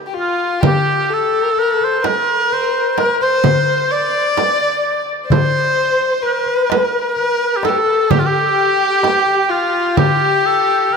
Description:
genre	Arabic maqam ensemble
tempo	128 BPM (eighths)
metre	10/8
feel	straight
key	C maqam rast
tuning	A4 = 440 Hz
part	warm violin	second line	0.1-11.0 s	F4 to D5	-17 LUFS	left 5 dB	none
part	warm oboe	melody	0.2-11.0 s	F4 to D5	-17 LUFS	right 3 dB	tape echo
part	darbuka	percussion	0.2-11.0 s	none	-19 LUFS	left 5 dB	none
part	frame drum	percussion	0.6-10.2 s	none	-22 LUFS	right 11 dB	none
room	wet plate reverb, RT60 3.5 s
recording	dreamy mix soaked in reverb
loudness	-13 LUFS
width	side -5 dB against mid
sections	0.6-11.0 A section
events	none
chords	none

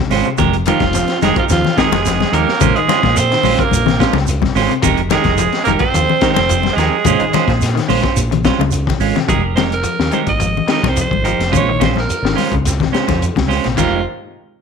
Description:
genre	afrobeat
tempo	108 BPM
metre	4/4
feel	straight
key	F minor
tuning	A4 = 440 Hz
part	electric guitar at the edge of break-up	arpeggios	0.0-13.8 s	C3 to F3	-23 LUFS	left 10 dB	lush chorus
part	clean electric guitar	stabs	0.1-14.0 s	Ab3 to C5	-20 LUFS	right 12 dB	none
part	fingered electric bass	bass	0.1-14.0 s	F1 to Bb2	-19 LUFS	equal	none
part	crunchy breakbeat drum kit	drums	0.1-13.9 s	hi-hat, kick drum, ride cymbal, snare drum	-20 LUFS	left 4 dB	none
part	shekere	percussion	0.1-13.9 s	none	-22 LUFS	right 4 dB	none
part	congas	percussion	0.4-13.9 s	none	-21 LUFS	left 12 dB	none
part	raspy alto saxophone	melody	0.7-14.0 s	F4 to Eb5	-19 LUFS	right 4 dB	none
part	growling tenor saxophone	second line	0.7-7.8, 13.8-14.0 s	F3 to C4	-21 LUFS	right 12 dB	none
room	light reverb, studio reverb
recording	1960s-style stereo with parts hard left and right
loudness	-12 LUFS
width	side -6 dB against mid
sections	0.0-9.3 A section; 9.3-13.8 B section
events	drum fill 8.5-9.3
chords	0.4 Fm11; 2.6 Bbm9; 4.8 Fm11; 7.1 Bbm9; 9.3 Fm11; 11.5 Bbm9; 13.8 Fm11

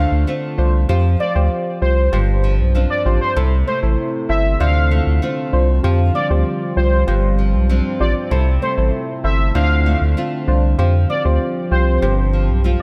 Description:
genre	dancehall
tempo	97 BPM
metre	4/4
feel	straight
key	C major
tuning	A4 = 440 Hz
part	warm velvety synth lead	melody	0.0-12.8 s	C5 to F5	-26 LUFS	equal	chorus, delay
part	deep mellow chord stab	accompaniment	0.0-12.8 s	D4 to C5	-27 LUFS	equal	chorus
part	nylon-string guitar	arpeggios	0.0-12.8 s	G2 to F4	-27 LUFS	equal	subtle chorus
part	warm sub bass	bass	0.0-12.8 s	G1 to F2	-18 LUFS	equal	none
part	deep dark ambient pad	sustained chords	3.7-12.8 s	C3 to G4	-27 LUFS	equal	chorus, built-in reverb
room	light reverb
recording	none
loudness	-17 LUFS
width	mono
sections	0.0-12.8 A section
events	none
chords	0.0 Dm7; 0.9 Fsus2; 2.1 G7sus4; 3.4 C6; 4.6 Dm7; 5.8 Fsus2; 7.1 G7sus4; 8.3 C6; 9.6 Dm7; 10.8 Fsus2; 12.0 G7sus4

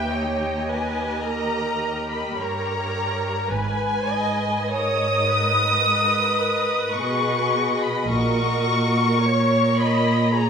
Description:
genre	classical, slow romantic movement for string orchestra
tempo	53 BPM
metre	4/4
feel	rubato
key	G# minor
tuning	A4 = 440 Hz
part	warm studio violin section	melody	0.0-10.5 s	G5 to D#6	-23 LUFS	left 2 dB	none
part	rich studio violin section	second line	0.0-10.5 s	F#4 to E5	-29 LUFS	left 2 dB	none
part	warm chamber viola section	accompaniment	0.0-10.5 s	A#4 to D#5	-27 LUFS	right 3 dB	none
part	dark chamber double bass section	bass	0.0-9.2 s	G#1 to A#1	-29 LUFS	right 2 dB	none
part	rich chamber cello section	bass	0.0-10.5 s	D#2 to B2	-25 LUFS	right 2 dB	none
room	wet scoring stage reverb, RT60 2.0 s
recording	minimal, uncompressed stereo recording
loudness	-19 LUFS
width	side -6 dB against mid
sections	0.0-10.5 A section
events	none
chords	0.0 D#7; 3.5 G#m; 8.1 F#/A#

